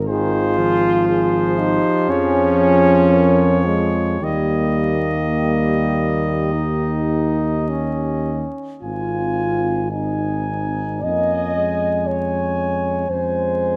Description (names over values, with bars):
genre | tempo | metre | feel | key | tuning
classical, hymn-like piece for brass band | 51-61 BPM | 4/4 | rubato | Ab major | A4 = 439 Hz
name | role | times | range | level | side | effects
warm French horn section | second line | 0.0-13.8 s | Eb4 to Eb5 | -26 LUFS | equal | none
mellow tuba | bass | 0.0-13.8 s | Ab1 to F2 | -24 LUFS | equal | none
clear cornet | melody | 0.1-13.8 s | C5 to Ab5 | -28 LUFS | equal | none
clear trombone | accompaniment | 0.1-13.8 s | Eb3 to Eb4 | -26 LUFS | equal | none
warm euphonium | accompaniment | 0.1-13.8 s | Ab3 to F4 | -24 LUFS | equal | none
room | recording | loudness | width
light reverb | close, detailed microphones, vinyl crackle | -19 LUFS | mono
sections
0.0-8.8 A section; 8.8-13.8 B section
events
none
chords
0.1 Ab; 2.1 Db/F; 4.2 Eb; 8.8 Ab; 11.0 Db/F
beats
| 0.07 1.08 2.09 3.12 | 4.22 5.38 6.54 7.70 | 8.83 9.91 11.04 12.09 | 13.10